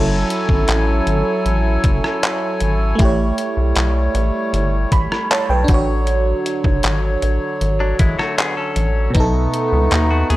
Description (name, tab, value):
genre	contemporary R&B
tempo	78 BPM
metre	4/4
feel	straight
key	F# minor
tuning	A4 = 441 Hz
part	FM electric piano	accompaniment	0.0-10.4 s	B2 to B5	-21 LUFS	right 2 dB	chorus
part	hand-pumped harmonium	sustained chords	0.0-10.4 s	D3 to G#5	-23 LUFS	equal	none
part	rubbery square bass	bass	0.0-10.4 s	F#1 to D#2	-18 LUFS	equal	none
part	detuned 8-bit digital drum machine	drums	0.3-10.4 s	handclaps, hi-hat, kick drum, rim click	-19 LUFS	equal	none
part	direct-recorded clean electric guitar	arpeggios	7.8-10.4 s	F#3 to A4	-24 LUFS	left 3 dB	none
room	little or no reverb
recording	dry, gritty hardware recording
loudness	-15 LUFS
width	side -16 dB against mid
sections	0.0-10.4 A section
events	none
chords	0.0 F#m7; 3.0 A7; 5.7 Dmaj7; 9.1 B7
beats	0.69 1.46 2.23 | 2.99 3.76 4.53 5.30 | 6.07 6.84 7.61 8.38 | 9.15 9.92